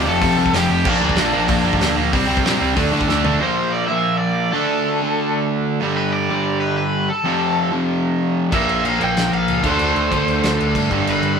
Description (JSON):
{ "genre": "punk rock", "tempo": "188 BPM", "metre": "4/4", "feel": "straight", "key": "D minor", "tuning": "A4 = 440 Hz", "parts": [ { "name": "raw garage guitar", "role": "melody", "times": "0.0-11.4 s", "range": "D4 to G5", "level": "-22 LUFS", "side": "left 1 dB", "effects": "overdrive" }, { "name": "overdriven semi-hollow guitar", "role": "riff", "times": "0.0-11.4 s", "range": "F2 to D4", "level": "-22 LUFS", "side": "left 6 dB", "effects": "none" }, { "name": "overdriven semi-hollow guitar", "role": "riff", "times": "0.0-11.4 s", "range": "F2 to D4", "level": "-20 LUFS", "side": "right 7 dB", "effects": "none" }, { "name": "sludgy distorted guitar", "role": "riff", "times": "0.0-3.4, 8.5-11.4 s", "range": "F2 to D4", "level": "-27 LUFS", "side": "left 2 dB", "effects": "none" }, { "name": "overdriven picked electric bass", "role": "bass", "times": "0.0-3.4, 8.5-11.3 s", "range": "F1 to Bb2", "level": "-26 LUFS", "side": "equal", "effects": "none" }, { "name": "loose indie drum kit", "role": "drums", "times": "0.2-3.3, 8.5-11.3 s", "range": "crash cymbal, hi-hat, kick drum, snare drum, toms", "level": "-22 LUFS", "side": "equal", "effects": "none" } ], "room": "moderate studio reverb, RT60 0.7 s", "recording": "band playing live in one room", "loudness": "-16 LUFS", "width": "side -6 dB against mid", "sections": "0.0-3.4 A section; 3.4-11.4 B section", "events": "overdriven electric guitar solo 0.0-3.4; drum fill 3.1-3.4; half time 3.4-11.4", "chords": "0.0 F; 0.9 Bb; 2.1 C5; 2.8 D5; 3.4 Bb; 4.5 D5; 5.8 G; 7.2 F; 8.5 Bb5; 9.6 D5", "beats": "0.23 0.54 | 0.86 1.18 1.50 1.82 | 2.14 2.46 2.78 3.10 | 3.42 3.73 4.05 4.37 | 4.69 5.01 5.33 5.65 | 5.97 6.29 6.61 6.93 | 7.25 7.57 7.89 8.21 | 8.53 8.84 9.16 9.48 | 9.80 10.12 10.44 10.76 | 11.07 11.39" }